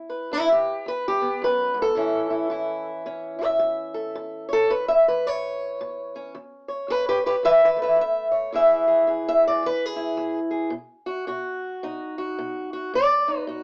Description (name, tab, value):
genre	acoustic country blues, solo or duo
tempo	109 BPM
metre	4/4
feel	swing 61% on 8ths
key	E major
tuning	A4 = 440 Hz
part	fingerpicked steel-string acoustic guitar	solo	0.0-13.6 s	E2 to E5	-24 LUFS	equal	none
room	light reverb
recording	small speaker sound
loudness	-23 LUFS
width	mono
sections	0.0-13.6 A section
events	steel-string acoustic guitar solo 0.0-13.6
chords	0.0 E5; 2.0 A; 8.5 E; 10.7 B